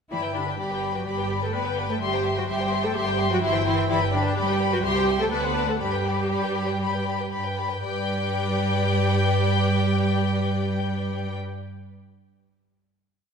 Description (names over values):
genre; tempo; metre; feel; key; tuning
quick classical-period movement for string orchestra; 117-128 BPM; 4/4; straight; G major; A4 = 440 Hz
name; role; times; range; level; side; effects
rich studio violin section; melody; 0.1-11.4 s; F#5 to C6; -29 LUFS; left 6 dB; none
rich studio violin section; second line; 0.1-11.3 s; G4 to G5; -30 LUFS; left 2 dB; none
rich studio viola section; accompaniment; 0.1-11.4 s; D4 to B4; -28 LUFS; equal; none
rich studio cello section; bass; 0.1-11.4 s; D3 to B3; -29 LUFS; right 3 dB; none
warm studio double bass section; bass; 0.1-11.4 s; G1 to G2; -28 LUFS; right 1 dB; none
room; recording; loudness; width
wet scoring stage reverb, RT60 1.6 s; minimal, uncompressed stereo recording; -22 LUFS; side -6 dB against mid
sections
0.1-7.8 A section; 7.8-11.8 final chord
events
slowing down 3.0-7.8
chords
0.1 G; 2.0 C/G; 3.9 G; 4.8 C; 5.3 D7; 5.8 G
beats
| 0.12 0.59 1.07 1.54 | 2.01 2.48 2.95 3.42 | 3.90 4.37 4.84 5.32 | 5.81 6.31 6.82 7.33 | 7.83 8.33 8.83 9.33 | 9.83 10.33 10.83 11.33